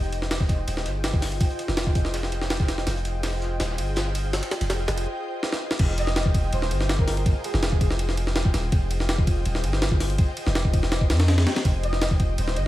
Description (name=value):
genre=drum and bass, jungle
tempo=164 BPM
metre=4/4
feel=straight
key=F minor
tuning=A4 = 438 Hz
part: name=ethereal airy pad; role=sustained chords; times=0.0-12.7 s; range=Eb4 to G5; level=-32 LUFS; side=left 1 dB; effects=ensemble chorus, built-in reverb
part: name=long sustained 808-style bass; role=bass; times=0.0-12.7 s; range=Eb1 to F2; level=-25 LUFS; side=equal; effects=tube saturation
part: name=crunchy breakbeat drum kit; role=drums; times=0.0-5.0 s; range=hi-hat, snare drum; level=-40 LUFS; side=equal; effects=none
part: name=breakbeat sampler-style drum kit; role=drums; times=0.1-12.7 s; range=crash cymbal, hi-hat, kick drum, ride cymbal, snare drum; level=-24 LUFS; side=equal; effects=studio reverb
part: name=breathy flute-like synth lead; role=melody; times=6.0-7.8, 11.8-12.7 s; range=Ab4 to Eb5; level=-32 LUFS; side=equal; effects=ensemble chorus, dub echo
room=light reverb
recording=echo-heavy mix, vinyl crackle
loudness=-21 LUFS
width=side -15 dB against mid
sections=0.0-5.8 A section; 5.8-12.7 B section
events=build-up 0.0-5.8; filter sweep on ambient pad 0.0-5.8; drum fill 2.9-5.1, 5.4-5.8; break 5.1-5.8; drop 5.8-12.7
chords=0.0 Fm9; 11.7 Cm